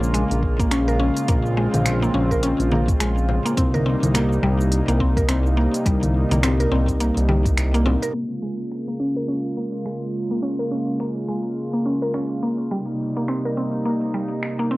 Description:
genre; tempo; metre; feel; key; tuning
organic downtempo; 105 BPM; 4/4; swing 59% on 16ths; Bb dorian; A4 = 440 Hz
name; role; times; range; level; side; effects
warm analog pad; sustained chords; 0.0-14.8 s; C3 to F4; -25 LUFS; equal; chorus, sidechain pumping, plate reverb
mallet-like synth pluck; arpeggios; 0.0-14.8 s; G3 to Bb4; -24 LUFS; equal; chorus, tape echo, plate reverb
smooth synth bass; bass; 0.0-8.0 s; Bb1 to C2; -21 LUFS; equal; sidechain pumping
deep house drum kit; drums; 0.0-14.6 s; congas, finger snaps, hi-hat, shaker; -26 LUFS; left 1 dB; cassette tape
electronic kick drum; drums; 0.4-7.5 s; none; -22 LUFS; equal; cassette tape
frame drum; percussion; 1.9-8.0 s; none; -32 LUFS; left 4 dB; none
room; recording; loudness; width
moderate small room reverb, RT60 0.5 s; home recording on cassette, low-pass filter; -19 LUFS; side -20 dB against mid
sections
0.0-8.1 A section; 8.1-14.8 B section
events
filter sweep on synth pluck 8.1-14.8; filter sweep 8.1-14.8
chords
0.0 Bbm7; 3.6 Cm7; 8.1 Bbm7; 12.7 Cm7

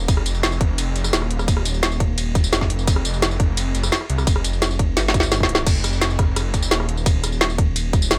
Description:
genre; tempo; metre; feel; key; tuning
dark technical drum and bass; 172 BPM; 4/4; straight; unclear; A4 = 441 Hz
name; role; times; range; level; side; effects
detuned saw bass; bass; 0.0-8.2 s; Eb1 to C2; -25 LUFS; equal; chorus, overdrive
drum and bass drum kit; drums; 0.0-8.2 s; crash cymbal, hi-hat, ride cymbal, rim click, snare drum, tambourine; -24 LUFS; equal; none
electronic kick drum; drums; 0.1-8.0 s; none; -21 LUFS; equal; none
room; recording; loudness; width
little or no reverb; none; -20 LUFS; mono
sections
0.0-5.7 A section; 5.7-8.2 A section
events
drop 0.0-5.7, 5.7-8.2; drum fill 5.0-5.7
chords
none

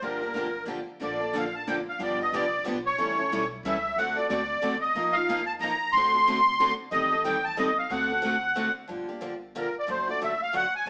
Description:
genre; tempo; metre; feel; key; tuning
acoustic string swing (jazz manouche); 183 BPM; 3/4; swing 59% on 8ths; G minor; A4 = 441 Hz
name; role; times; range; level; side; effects
musette accordion; melody; 0.0-10.9 s; Bb4 to C6; -24 LUFS; equal; none
picked steel-string acoustic guitar; accompaniment; 0.0-10.9 s; D3 to Bb4; -33 LUFS; equal; none
picked steel-string acoustic guitar; accompaniment; 0.0-8.7 s; D3 to Bb4; -34 LUFS; equal; none
upright bass; bass; 0.0-10.9 s; F#1 to F2; -46 LUFS; equal; none
room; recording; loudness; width
wet stone room reverb, RT60 1.0 s; band playing live in one room, small speaker sound; -24 LUFS; side -37 dB against mid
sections
0.0-1.0 A section; 1.0-8.9 B section; 8.9-10.9 C section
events
accordion solo 8.9-10.9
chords
0.0 Gm7; 1.0 Bbmaj7; 2.0 G7; 3.0 A7; 4.0 D7; 5.0 F7sus4; 5.9 D7; 6.9 Am7b5; 7.9 D7; 8.9 Gm7; 9.9 D/F#

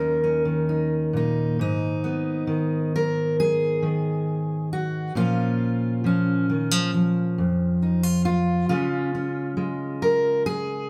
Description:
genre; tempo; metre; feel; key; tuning
folk, solo fingerstyle acoustic guitar; 68 BPM; 4/4; straight; unclear; A4 = 442 Hz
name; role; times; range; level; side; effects
fingerpicked steel-string acoustic guitar; solo; 0.0-10.9 s; Eb2 to Bb4; -24 LUFS; equal; none
room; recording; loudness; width
moderate large studio reverb, RT60 1.2 s; band playing live in one room; -24 LUFS; mono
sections
0.0-1.6 A section; 1.6-10.9 B section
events
none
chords
0.0 Eb5; 1.6 Abm; 5.2 Bbm; 8.7 Db

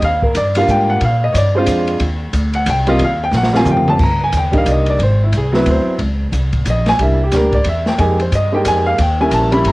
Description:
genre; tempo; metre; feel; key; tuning
jazz piano trio; 181 BPM; 3/4; swing 62% on 8ths; Eb major, C minor from 4.0 s; A4 = 440 Hz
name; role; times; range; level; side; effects
clear upright piano; melody; 0.0-9.7 s; Gb3 to B5; -15 LUFS; equal; cassette tape
upright bass; bass; 0.0-9.7 s; G1 to Bb2; -17 LUFS; equal; none
open jazz drum kit; drums; 0.0-9.7 s; crash cymbal, hi-hat, kick drum, ride cymbal, snare drum, toms; -20 LUFS; equal; cassette tape
room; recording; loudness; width
light reverb; home recording on cassette; -12 LUFS; side -20 dB against mid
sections
0.0-4.0 A section; 4.0-9.7 A section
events
upright piano solo 0.0-9.7; drum fill 3.3-4.0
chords
0.0 Ebmaj9; 1.0 Bb7; 2.0 Eb69; 4.0 Cm7; 5.0 Ab7alt; 6.0 Bbmadd9; 7.0 C7; 8.0 Fm11; 9.0 Eb7b9

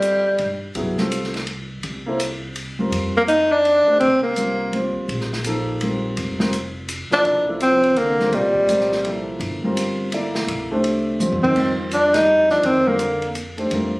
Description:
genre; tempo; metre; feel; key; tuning
modal jazz; 167 BPM; 3/4; swing 63% on 8ths; unclear; A4 = 442 Hz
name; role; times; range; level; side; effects
breathy tenor saxophone; melody; 0.0-0.6, 3.2-4.9, 7.1-9.3, 11.4-13.4 s; G3 to Eb4; -16 LUFS; equal; none
dark concert grand piano; accompaniment; 0.0-14.0 s; F3 to D5; -24 LUFS; equal; none
upright bass; bass; 0.0-14.0 s; F1 to G2; -32 LUFS; equal; none
open jazz drum kit; drums; 0.0-13.8 s; crash cymbal, hi-hat, kick drum, ride cymbal, snare drum, toms; -30 LUFS; equal; none
breathy trombone; second line; 7.1-9.3, 11.4-13.4 s; Bb2 to G3; -28 LUFS; equal; none
room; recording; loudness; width
light reverb; recorded on a phone in the room, club reverb, compression; -17 LUFS; side -24 dB against mid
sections
0.0-14.0 A section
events
drum fill 11.2-11.6; band accent 12.1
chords
0.0 Csus4; 2.9 Fsus4; 7.3 C13sus4; 11.6 F13sus4

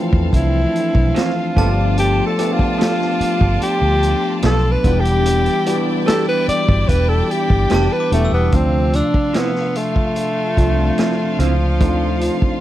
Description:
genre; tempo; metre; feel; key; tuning
lush 1970s-style soul; 73 BPM; 4/4; straight; D dorian; A4 = 440 Hz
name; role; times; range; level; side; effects
bright studio violin section; second line; 0.0-12.6 s; C4 to A5; -28 LUFS; equal; none
overdriven tine electric piano; accompaniment; 0.0-12.6 s; C3 to G4; -21 LUFS; left 2 dB; analog chorus
glockenspiel with brass mallets; texture; 0.0-11.5 s; G5 to E6; -34 LUFS; left 4 dB; none
vintage muted fingered electric bass; bass; 0.1-12.4 s; E1 to E2; -17 LUFS; equal; none
vintage drum kit; drums; 0.1-12.6 s; hi-hat, kick drum, snare drum; -20 LUFS; equal; none
clear alto saxophone; melody; 0.4-12.6 s; F3 to D5; -20 LUFS; equal; none
electric guitar through a small old amp; riff; 1.1-11.5 s; F3 to A4; -25 LUFS; right 8 dB; none
room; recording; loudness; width
little or no reverb; dry, close 1970s-style studio recording; -14 LUFS; side -13 dB against mid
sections
0.0-8.5 A section; 8.5-12.6 B section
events
alto saxophone solo 0.0-8.5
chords
0.0 Dm9; 1.6 G9; 4.8 Em7; 8.5 Dm9

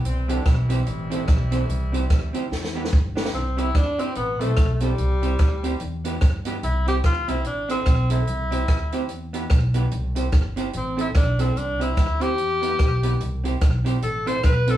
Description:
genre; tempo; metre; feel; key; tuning
ska; 146 BPM; 4/4; swing 59% on 8ths; C major; A4 = 437 Hz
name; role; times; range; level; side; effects
upright bass; bass; 0.0-14.8 s; G1 to G2; -24 LUFS; equal; none
compact cocktail drum kit; drums; 0.0-14.8 s; hi-hat, kick drum, rim click, snare drum; -21 LUFS; equal; none
clear horn section; melody; 0.1-2.9 s; D3 to E4; -34 LUFS; equal; none
vintage hollow-body jazz guitar; accompaniment; 0.3-14.8 s; B3 to C5; -28 LUFS; right 4 dB; none
warm tenor saxophone; melody; 3.3-14.8 s; G3 to C5; -25 LUFS; left 2 dB; none
room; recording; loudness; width
moderate studio reverb, RT60 0.5 s; band playing live in one room, studio reverb; -20 LUFS; side -13 dB against mid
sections
0.0-3.3 A section; 3.3-14.8 B section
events
drum fill 2.5-3.3; tenor saxophone solo 3.3-14.8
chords
0.0 Em; 0.9 Am; 1.7 C; 2.5 Em; 2.9 G; 3.3 C; 4.2 Am; 5.0 C; 5.8 Em; 6.6 C; 7.5 Am; 8.3 C; 9.1 Em; 9.9 C; 10.7 Am; 11.6 C; 12.4 Em; 13.2 C; 14.0 Am

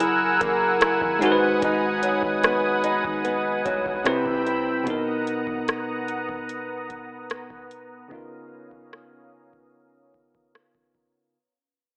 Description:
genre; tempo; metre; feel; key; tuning
contemporary R&B; 74 BPM; 4/4; straight; unclear; A4 = 440 Hz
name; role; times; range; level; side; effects
bell-like tine electric piano; accompaniment; 0.0-11.4 s; B2 to B4; -29 LUFS; equal; low-pass filter
lush unison pad; sustained chords; 0.0-11.3 s; B3 to E6; -28 LUFS; equal; chorus, low-pass filter
fingerpicked swing-style acoustic guitar; arpeggios; 0.0-5.5 s; G#2 to G#4; -29 LUFS; equal; low-pass filter, digital delay
long sustained 808-style bass; bass; 0.0-4.8 s; F#1 to B#1; -44 LUFS; equal; none
booming analog drum machine; drums; 0.0-11.1 s; hi-hat, kick drum, rim click; -27 LUFS; equal; none
room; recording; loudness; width
light reverb, digital ambience; AM radio sound; -23 LUFS; mono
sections
0.0-11.4 A section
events
fade-out 0.0-11.4; filter sweep 0.0-11.4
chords
0.0 F#9; 1.2 G#m7; 4.1 Cmaj7; 4.9 Bmaj7; 8.1 C#13

